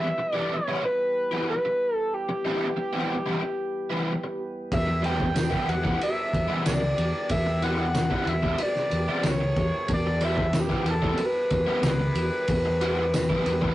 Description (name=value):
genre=psychedelic rock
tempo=93 BPM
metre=4/4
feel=straight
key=E dorian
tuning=A4 = 440 Hz
part: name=overdriven synth lead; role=melody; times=0.0-13.7 s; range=G4 to G5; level=-27 LUFS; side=equal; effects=distortion
part: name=tonewheel organ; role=sustained chords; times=0.0-13.7 s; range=E3 to B4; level=-39 LUFS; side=right 2 dB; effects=none
part: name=overdriven semi-hollow guitar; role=riff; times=0.0-13.7 s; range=E3 to E4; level=-29 LUFS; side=equal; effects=rotary speaker
part: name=fingered electric bass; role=bass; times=4.7-13.7 s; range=C#2 to E2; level=-28 LUFS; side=equal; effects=none
part: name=cloth-damped thuddy drum kit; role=drums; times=4.7-13.7 s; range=kick drum, ride cymbal, snare drum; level=-28 LUFS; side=equal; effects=none
part: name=tambourine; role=percussion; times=5.4-13.3 s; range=none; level=-45 LUFS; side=right 4 dB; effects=none
room=moderate studio reverb, RT60 0.6 s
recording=rough rehearsal-room recording, warm saturation, nothing above 10.7 kHz, faint mains hum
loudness=-23 LUFS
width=side -15 dB against mid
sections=0.0-13.7 A section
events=none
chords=0.0 Em